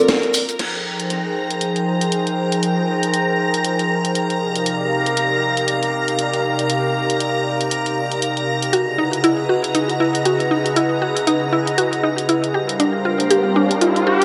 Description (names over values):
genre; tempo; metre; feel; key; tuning
deep house; 118 BPM; 4/4; swing 58% on 16ths; F dorian; A4 = 440 Hz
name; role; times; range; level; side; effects
deep mellow chord stab; stabs; 0.0-0.6 s; C4 to D5; -22 LUFS; equal; chorus, cassette tape, tape echo
string machine, violins; texture; 0.0-14.2 s; Bb4 to Bb6; -27 LUFS; equal; ensemble chorus
house drum kit; drums; 0.1-14.2 s; crash cymbal, hi-hat, snare drum; -26 LUFS; equal; vintage 12-bit sampler grit, tape echo
shekere; percussion; 0.1-0.6 s; none; -29 LUFS; equal; none
airy breathy pad; sustained chords; 0.6-14.2 s; C3 to G5; -22 LUFS; equal; chorus
mallet-like synth pluck; arpeggios; 8.7-14.2 s; D4 to G4; -21 LUFS; equal; chorus, phaser, tape echo
riser; sound effects; 13.2-14.2 s; none; -23 LUFS; equal; none
room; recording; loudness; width
moderate spring reverb, RT60 1.3 s, digital ambience; echo-heavy mix; -19 LUFS; mono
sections
0.6-14.2 A section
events
band accent 0.1; riser 13.2-14.2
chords
0.0 Gm11 (rootless); 0.6 Fm11; 4.4 Cm11; 8.7 Dbm11; 12.5 Gm11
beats
0.09 | 0.59 1.10 1.61 2.12 | 2.63 3.14 3.65 4.15 | 4.66 5.17 5.68 6.19 | 6.70 7.20 7.71 8.22 | 8.73 9.24 9.75 10.26 | 10.76 11.27 11.78 12.29 | 12.80 13.31 13.81